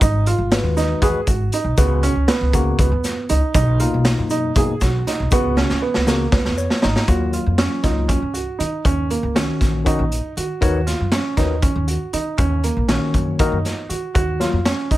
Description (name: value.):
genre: progressive instrumental, band music in an uneven meter.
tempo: 238 BPM (eighths).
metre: 7/8.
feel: straight.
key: unclear.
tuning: A4 = 440 Hz.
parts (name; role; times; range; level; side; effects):
dark grand piano; arpeggios; 0.0-15.0 s; Bb3 to Ab4; -23 LUFS; right 4 dB; none.
upright bass; bass; 0.0-15.0 s; Ab1 to Eb3; -21 LUFS; equal; none.
raw garage drum kit; drums; 0.0-15.0 s; hi-hat, kick drum, snare drum; -20 LUFS; equal; none.
tube shaker; percussion; 0.0-6.8 s; none; -35 LUFS; left 6 dB; none.
overdriven tine electric piano; accompaniment; 0.5-14.6 s; B2 to Bb5; -22 LUFS; left 4 dB; none.
room: moderate studio reverb, RT60 0.5 s.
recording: none.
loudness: -16 LUFS.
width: side -16 dB against mid.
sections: 0.0-7.1 A section; 7.1-15.0 B section.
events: drum fill 5.6-7.1; tine electric piano fill 6.3-7.1.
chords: 0.0 Abm7; 1.8 Db7sus4; 3.5 Bmaj7; 5.3 Db7sus4; 7.1 Gbmaj7; 8.8 Ebm7; 10.6 Ebm9; 12.4 Gb6/Bb; 14.2 Gbmaj7.